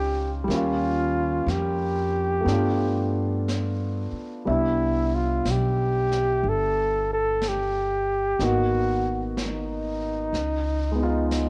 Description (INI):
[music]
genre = jazz ballad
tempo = 61 BPM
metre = 4/4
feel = swing 66% on 8ths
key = unclear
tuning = A4 = 440 Hz
[part]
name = warm flugelhorn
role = melody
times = 0.0-11.5 s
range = Eb4 to A4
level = -28 LUFS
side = equal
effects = cassette tape
[part]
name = warm concert grand piano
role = accompaniment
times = 0.0-11.5 s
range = G3 to E5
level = -30 LUFS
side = equal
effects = cassette tape
[part]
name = upright bass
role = bass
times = 0.0-11.5 s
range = G1 to G2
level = -30 LUFS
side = equal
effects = none
[part]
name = jazz brush drum kit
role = drums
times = 0.5-11.5 s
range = brushed snare drum, hi-hat, snare drum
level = -40 LUFS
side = equal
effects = cassette tape
[sound]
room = light reverb, studio reverb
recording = home recording on cassette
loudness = -25 LUFS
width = mono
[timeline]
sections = 0.0-4.5 A section; 4.5-11.5 B section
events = none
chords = 0.5 Eb9; 2.5 G9; 4.5 Cmaj9; 8.4 Abm7; 10.3 Db9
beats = | 0.50 1.48 2.47 3.47 | 4.47 5.47 6.45 7.43 | 8.41 9.38 10.34 11.31